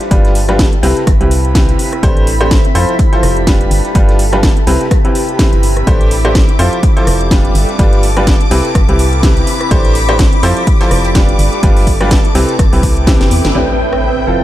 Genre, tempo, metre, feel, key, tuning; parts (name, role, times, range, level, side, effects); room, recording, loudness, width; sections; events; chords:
piano house; 125 BPM; 4/4; swing 57% on 16ths; C major; A4 = 440 Hz
clear upright piano; riff; 0.0-14.4 s; A2 to C5; -16 LUFS; equal; sidechain pumping, ping-pong delay
breakbeat sampler-style drum kit; drums; 0.0-13.4 s; hi-hat, snare drum; -32 LUFS; right 2 dB
house drum kit; drums; 0.0-14.0 s; hi-hat, rim click, snare drum; -19 LUFS; equal; overdrive
granular cloud pad; texture; 0.0-14.4 s; C4 to B5; -19 LUFS; equal; built-in reverb, sidechain pumping
organ-like FM bass; bass; 0.1-14.4 s; F1 to F2; -14 LUFS; equal; sidechain pumping
electronic kick drum; drums; 0.1-13.2 s; -11 LUFS; equal; overdrive
string machine, violins; sustained chords; 5.9-14.4 s; G5 to D6; -23 LUFS; left 1 dB; ensemble chorus, sidechain pumping
impact; sound effects; 13.6-14.4 s; -23 LUFS; equal
little or no reverb; -9 LUFS; side -14 dB against mid
0.0-13.6 A section
drum fill 13.2-13.6; band accent 13.4; impact 13.6-14.4
0.0 G7; 0.8 Cmaj7; 2.0 Am11; 2.8 Fmaj7; 3.7 G7; 4.7 Cmaj7; 5.9 Am11; 6.6 Fmaj7; 7.6 G7; 8.5 Cmaj7; 9.7 Am11; 10.4 Fmaj7; 11.4 G7; 12.4 Cmaj7; 13.6 Am11